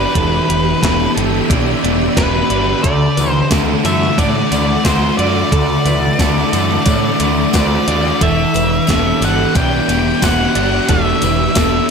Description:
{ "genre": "rock, shoegaze and dream pop", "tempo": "89 BPM", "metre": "4/4", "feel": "straight", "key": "E minor", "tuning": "A4 = 440 Hz", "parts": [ { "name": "octave-fuzz lead guitar", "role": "melody", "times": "0.0-11.9 s", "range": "B4 to G5", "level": "-19 LUFS", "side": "left 1 dB", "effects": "distortion, analog delay" }, { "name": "soft additive organ-like pad", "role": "sustained chords", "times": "0.0-11.9 s", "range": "G4 to E6", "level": "-25 LUFS", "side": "right 1 dB", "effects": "ensemble chorus, built-in reverb" }, { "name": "twelve-string electric guitar", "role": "arpeggios", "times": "0.0-11.9 s", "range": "A4 to C6", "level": "-24 LUFS", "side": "right 13 dB", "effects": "lush chorus, analog delay" }, { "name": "overdriven electric guitar", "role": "riff", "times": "0.0-11.9 s", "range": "D3 to G4", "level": "-19 LUFS", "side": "right 12 dB", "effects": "reverse reverb" }, { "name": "thick fuzz guitar", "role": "riff", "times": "0.0-11.9 s", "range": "D3 to G4", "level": "-18 LUFS", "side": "left 12 dB", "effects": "distortion, ensemble chorus" }, { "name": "growling picked electric bass", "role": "bass", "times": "0.0-11.8 s", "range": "E1 to A2", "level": "-20 LUFS", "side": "equal", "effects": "overdrive" }, { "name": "gated 80s digital drum machine", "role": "drums", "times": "0.2-11.7 s", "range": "hi-hat, kick drum, snare drum", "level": "-17 LUFS", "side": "equal", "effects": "gated reverb, gated reverb snare" }, { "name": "tambourine", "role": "percussion", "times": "3.2-11.7 s", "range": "none", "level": "-30 LUFS", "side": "left 13 dB", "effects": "none" } ], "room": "light reverb, digital ambience", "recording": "none", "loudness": "-12 LUFS", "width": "side -6 dB against mid", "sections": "0.0-11.9 A section", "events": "none", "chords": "0.0 Em7; 2.8 Dadd9; 8.2 Em7", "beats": "| 0.15 0.82 1.49 2.17 | 2.84 3.51 4.18 4.85 | 5.52 6.20 6.87 7.54 | 8.21 8.88 9.55 10.22 | 10.89 11.56" }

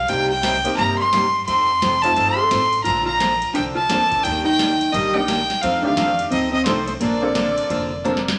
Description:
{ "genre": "country, western swing", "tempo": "173 BPM", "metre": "4/4", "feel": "swing 62% on 8ths", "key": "Bb major", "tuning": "A4 = 440 Hz", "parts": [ { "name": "clear fiddle", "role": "melody", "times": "0.0-8.2 s", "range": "C5 to C6", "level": "-21 LUFS", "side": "equal", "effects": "none" }, { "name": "upright bass", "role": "bass", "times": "0.0-8.3 s", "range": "F1 to F2", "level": "-34 LUFS", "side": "equal", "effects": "none" }, { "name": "picked steel-string acoustic guitar", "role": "accompaniment", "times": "0.1-8.2 s", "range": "C3 to A4", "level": "-28 LUFS", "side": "equal", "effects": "none" }, { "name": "booming analog drum machine", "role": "drums", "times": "0.1-8.4 s", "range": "hi-hat, kick drum, ride cymbal, snare drum", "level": "-31 LUFS", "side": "equal", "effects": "none" }, { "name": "honky-tonk upright piano", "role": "accompaniment", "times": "0.6-8.2 s", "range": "Eb3 to Bb4", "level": "-29 LUFS", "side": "equal", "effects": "none" }, { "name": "hollow-body jazz guitar", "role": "second line", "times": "2.4-8.2 s", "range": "A3 to A4", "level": "-27 LUFS", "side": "equal", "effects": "none" } ], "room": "moderate large studio reverb, RT60 1.1 s", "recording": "none", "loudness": "-19 LUFS", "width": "mono", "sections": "0.0-8.4 A section", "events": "drum fill 8.1-8.4", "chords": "0.1 Cm7; 1.5 F7; 2.9 Bbmaj9; 4.2 Ebmaj7; 5.6 F13; 7.0 Bbmaj9", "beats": "| 0.09 0.44 0.78 1.13 | 1.48 1.82 2.17 2.52 | 2.86 3.21 3.55 3.90 | 4.25 4.59 4.94 5.28 | 5.63 5.98 6.32 6.67 | 7.01 7.36 7.71 8.05" }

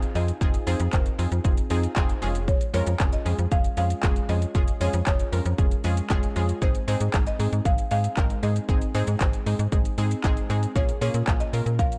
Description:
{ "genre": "dance-pop", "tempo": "116 BPM", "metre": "4/4", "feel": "straight", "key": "Db major", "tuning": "A4 = 440 Hz", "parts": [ { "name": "buzzing marimba with medium mallets", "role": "melody", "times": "0.0-11.9 s", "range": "C5 to F5", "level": "-35 LUFS", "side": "equal", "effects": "delay" }, { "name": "unison pluck", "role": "accompaniment", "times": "0.0-12.0 s", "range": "Ab3 to Bb4", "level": "-33 LUFS", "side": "equal", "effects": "sidechain pumping" }, { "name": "slap-like FM bass", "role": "bass", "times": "0.0-12.0 s", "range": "F1 to Bb2", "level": "-28 LUFS", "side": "equal", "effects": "sidechain pumping" }, { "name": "pop drum kit", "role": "drums", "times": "0.0-12.0 s", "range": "handclaps, hi-hat, kick drum, shaker", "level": "-27 LUFS", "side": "equal", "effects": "none" } ], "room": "little or no reverb", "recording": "dark, warm production", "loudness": "-24 LUFS", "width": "mono", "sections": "0.0-12.0 A section", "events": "none", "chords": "0.0 Fm7; 2.2 Db/F; 6.6 Ab; 10.8 Bbm7", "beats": "| 0.41 0.93 1.45 1.96 | 2.48 3.00 3.52 4.03 | 4.55 5.07 5.58 6.10 | 6.62 7.14 7.65 8.17 | 8.69 9.21 9.72 10.24 | 10.76 11.27 11.79" }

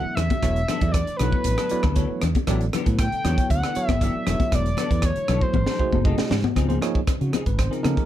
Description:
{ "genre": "electric jazz fusion", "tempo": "117 BPM", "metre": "4/4", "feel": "straight", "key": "E mixolydian", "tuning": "A4 = 438 Hz", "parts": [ { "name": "overdriven synth lead", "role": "melody", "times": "0.0-6.1 s", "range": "B4 to G5", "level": "-27 LUFS", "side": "equal", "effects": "slapback echo" }, { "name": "bell-like tine electric piano", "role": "accompaniment", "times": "0.0-8.1 s", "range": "F3 to E5", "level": "-29 LUFS", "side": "right 4 dB", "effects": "fast stereo tremolo" }, { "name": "string machine, cellos", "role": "sustained chords", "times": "0.0-8.1 s", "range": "B#2 to A4", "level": "-34 LUFS", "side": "left 1 dB", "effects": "none" }, { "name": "semi-hollow electric guitar", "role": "stabs", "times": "0.0-7.9 s", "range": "E3 to A4", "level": "-32 LUFS", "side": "left 7 dB", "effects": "ensemble chorus" }, { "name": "mellow fretless electric bass", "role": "bass", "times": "0.1-8.0 s", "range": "E1 to Db3", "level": "-24 LUFS", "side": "equal", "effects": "none" }, { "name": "crisp fusion drum kit", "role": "drums", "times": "0.2-8.1 s", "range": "hi-hat, kick drum, rim click, snare drum, toms", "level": "-24 LUFS", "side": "equal", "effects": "none" }, { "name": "congas", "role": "percussion", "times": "0.2-8.0 s", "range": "none", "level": "-28 LUFS", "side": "left 8 dB", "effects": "none" } ], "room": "light reverb", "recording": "dark, warm production", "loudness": "-20 LUFS", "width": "side -12 dB against mid", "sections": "0.0-6.6 A section; 6.6-8.1 B section", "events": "drum fill 5.5-6.6", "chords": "0.0 E9sus4; 2.5 A9sus4; 4.3 E9sus4; 5.5 G#7b9; 6.6 Dbmaj9", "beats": "| 0.43 0.94 1.45 1.96 | 2.48 2.99 3.50 4.01 | 4.52 5.04 5.55 6.06 | 6.57 7.08 7.60" }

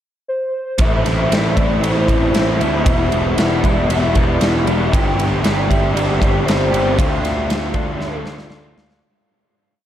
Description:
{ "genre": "rock, shoegaze and dream pop", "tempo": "117 BPM", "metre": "4/4", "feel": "straight", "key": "A minor", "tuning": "A4 = 442 Hz", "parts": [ { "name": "warbly nostalgic lead", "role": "melody", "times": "0.3-8.8 s", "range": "A4 to G5", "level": "-23 LUFS", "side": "equal", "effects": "chorus, tremolo, diffuse ambient delay" }, { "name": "raw garage guitar", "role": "riff", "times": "0.8-9.0 s", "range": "E2 to G4", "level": "-19 LUFS", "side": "equal", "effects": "overdrive, analog chorus" }, { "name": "fuzz picked electric bass", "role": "bass", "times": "0.8-9.0 s", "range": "E1 to D2", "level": "-20 LUFS", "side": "equal", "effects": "overdrive" }, { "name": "huge arena drum kit", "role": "drums", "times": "0.8-9.0 s", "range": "kick drum, ride cymbal, snare drum", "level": "-19 LUFS", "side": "equal", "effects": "none" } ], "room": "wet huge ambient reverb, RT60 7.8 s", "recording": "dreamy mix soaked in reverb", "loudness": "-14 LUFS", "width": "side -11 dB against mid", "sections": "0.0-0.8 pickup bar; 0.8-9.0 verse", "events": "fade-out 7.0-9.0; drum fill 8.0-9.0", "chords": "0.0 N.C.; 0.8 Am; 2.9 Em7; 4.9 Gsus4; 7.0 Dmadd9", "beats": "0.29 | 0.80 1.32 1.83 2.35 | 2.86 3.38 3.89 4.41 | 4.92 5.44 5.95 6.46 | 6.97 7.48 7.99 8.50" }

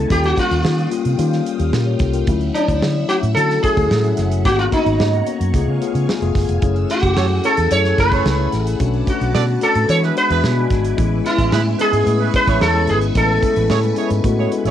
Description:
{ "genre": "polished 1980s jazz-funk pop", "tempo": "110 BPM", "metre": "4/4", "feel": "straight", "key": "A major", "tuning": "A4 = 440 Hz", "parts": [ { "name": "mellow tine electric piano", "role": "accompaniment", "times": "0.0-14.7 s", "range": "F#3 to C#5", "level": "-22 LUFS", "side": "left 9 dB", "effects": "medium stereo tremolo, wide subtle chorus, cassette tape" }, { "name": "phased string machine", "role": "sustained chords", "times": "0.0-14.7 s", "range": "A3 to E6", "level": "-31 LUFS", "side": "right 2 dB", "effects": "ensemble chorus, phaser, cassette tape" }, { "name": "vintage muted fingered electric bass", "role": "bass", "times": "0.0-14.7 s", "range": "E#1 to E3", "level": "-19 LUFS", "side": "right 1 dB", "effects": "none" }, { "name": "sitar", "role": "melody", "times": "0.1-14.7 s", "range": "D4 to C#5", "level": "-19 LUFS", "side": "right 1 dB", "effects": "cassette tape" }, { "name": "modern studio drum kit", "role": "drums", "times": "0.1-14.7 s", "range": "hi-hat, kick drum, snare drum", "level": "-22 LUFS", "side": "right 1 dB", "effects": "cassette tape" }, { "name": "warm horn section", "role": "second line", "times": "7.2-14.7 s", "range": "C#4 to D5", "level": "-24 LUFS", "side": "right 11 dB", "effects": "cassette tape" } ], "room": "light reverb", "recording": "home recording on cassette", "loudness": "-14 LUFS", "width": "side -10 dB against mid", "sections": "0.0-14.7 A section", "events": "none", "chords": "0.1 D#9; 2.3 Dmaj9; 4.5 G#m11; 5.5 C#7b13; 6.6 F#m9; 8.8 Bm7; 9.9 E7; 11.0 Amaj9", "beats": "| 0.10 0.65 1.19 1.74 | 2.28 2.82 3.37 3.91 | 4.45 5.00 5.54 6.08 | 6.63 7.17 7.71 8.26 | 8.80 9.35 9.89 10.43 | 10.98 11.52 12.06 12.61 | 13.15 13.70 14.24" }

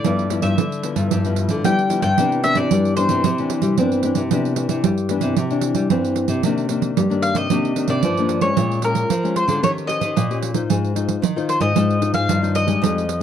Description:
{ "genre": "samba and choro", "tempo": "113 BPM", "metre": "4/4", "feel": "straight", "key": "C major, C minor from 6.4 s", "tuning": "A4 = 435 Hz", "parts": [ { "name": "mandolin", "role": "melody", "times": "0.0-13.2 s", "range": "Bb4 to G5", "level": "-22 LUFS", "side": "left 1 dB", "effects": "none" }, { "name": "nylon-string guitar", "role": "accompaniment", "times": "0.0-13.2 s", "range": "G2 to C5", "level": "-23 LUFS", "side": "left 6 dB", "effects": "none" }, { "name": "nylon-string guitar", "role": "bass", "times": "0.0-13.2 s", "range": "F2 to C4", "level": "-22 LUFS", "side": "equal", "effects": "none" }, { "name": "pandeiro", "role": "percussion", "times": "0.0-13.2 s", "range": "none", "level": "-23 LUFS", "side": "right 12 dB", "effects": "none" } ], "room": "little or no reverb", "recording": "dry, close 1970s-style studio recording", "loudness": "-17 LUFS", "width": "side -9 dB against mid", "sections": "0.0-6.4 A section; 6.4-13.2 B section", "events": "none", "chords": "0.0 G6; 2.2 Cmaj9; 6.4 Cm9; 8.6 Bbm7; 9.6 Eb13; 10.7 Ab6", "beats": "| 0.05 0.58 1.12 1.65 | 2.18 2.72 3.25 3.78 | 4.32 4.85 5.38 5.92 | 6.45 6.98 7.51 8.04 | 8.57 9.11 9.64 10.17 | 10.70 11.23 11.76 12.29 | 12.82" }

